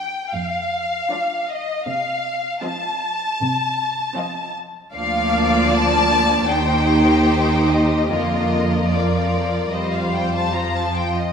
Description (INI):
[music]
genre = classical, slow romantic movement for string orchestra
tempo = 72-80 BPM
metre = 4/4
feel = rubato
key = Bb major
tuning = A4 = 440 Hz
[part]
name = warm studio violin section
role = melody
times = 0.0-11.3 s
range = D5 to Bb5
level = -22 LUFS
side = left 3 dB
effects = none
[part]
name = rich studio violin section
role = second line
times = 0.0-11.2 s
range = D4 to Eb5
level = -24 LUFS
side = equal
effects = none
[part]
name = rich studio viola section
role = accompaniment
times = 0.0-11.3 s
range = D3 to Eb4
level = -22 LUFS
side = right 2 dB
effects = none
[part]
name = dark studio cello section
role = bass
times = 0.3-11.1 s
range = D2 to C3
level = -23 LUFS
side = right 2 dB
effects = none
[sound]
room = wet scoring stage reverb, RT60 1.7 s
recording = none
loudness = -17 LUFS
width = side -7 dB against mid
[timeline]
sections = 0.0-11.3 A section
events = none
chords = 0.0 Bb (rootless); 1.9 F7/C; 4.9 Bb/D; 6.5 Cm/Eb; 8.1 Bb/F; 9.7 F5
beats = 0.34 1.12 | 1.88 2.64 3.41 4.17 | 4.95 5.72 6.49 7.29 | 8.09 8.91 9.72 10.54